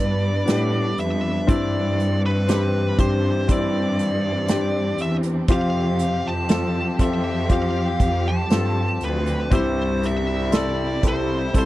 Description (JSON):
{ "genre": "pop ballad", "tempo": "60 BPM", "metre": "4/4", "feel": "straight", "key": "C major", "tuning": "A4 = 441 Hz", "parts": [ { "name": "fuzz lead guitar", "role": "melody", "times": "0.0-11.7 s", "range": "B4 to A5", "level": "-27 LUFS", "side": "right 1 dB", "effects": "distortion" }, { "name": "clear baby grand piano", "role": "accompaniment", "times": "0.0-11.7 s", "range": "G2 to A4", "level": "-25 LUFS", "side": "left 3 dB", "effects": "none" }, { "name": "warm studio string section", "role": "sustained chords", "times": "0.0-11.7 s", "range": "C3 to B4", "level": "-29 LUFS", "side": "right 1 dB", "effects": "none" }, { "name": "rich studio cello section", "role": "bass", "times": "0.0-11.7 s", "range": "C2 to A2", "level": "-24 LUFS", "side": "equal", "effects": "none" }, { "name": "unplugged drum kit", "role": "drums", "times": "0.5-11.7 s", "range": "hi-hat, kick drum, snare drum", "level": "-20 LUFS", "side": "right 1 dB", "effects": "none" } ], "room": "little or no reverb", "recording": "dry, close 1970s-style studio recording", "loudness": "-19 LUFS", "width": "side -16 dB against mid", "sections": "0.0-11.7 A section", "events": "none", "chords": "0.0 G; 1.5 Cadd9/G; 5.5 Fsus2; 9.5 C" }